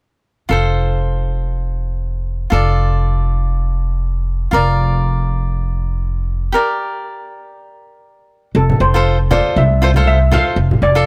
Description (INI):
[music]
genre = calypso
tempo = 119 BPM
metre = 4/4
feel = swing 54% on 16ths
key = F major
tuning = A4 = 440 Hz
[part]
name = cavaquinho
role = accompaniment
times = 0.5-11.1 s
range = F4 to D5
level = -22 LUFS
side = equal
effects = none
[part]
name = upright bass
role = bass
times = 0.5-11.1 s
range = F1 to C2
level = -18 LUFS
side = equal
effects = none
[part]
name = steel pan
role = melody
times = 8.6-11.1 s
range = A4 to F5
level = -20 LUFS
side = equal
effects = none
[part]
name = congas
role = percussion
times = 8.7-10.8 s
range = none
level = -23 LUFS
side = equal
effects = none
[sound]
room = little or no reverb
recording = none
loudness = -16 LUFS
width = mono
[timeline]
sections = 0.5-8.6 A section; 8.6-11.1 B section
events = break 6.5-8.6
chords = 0.5 F; 2.5 Dm/F; 4.5 Bb/F; 6.5 Gm; 8.6 Fmaj7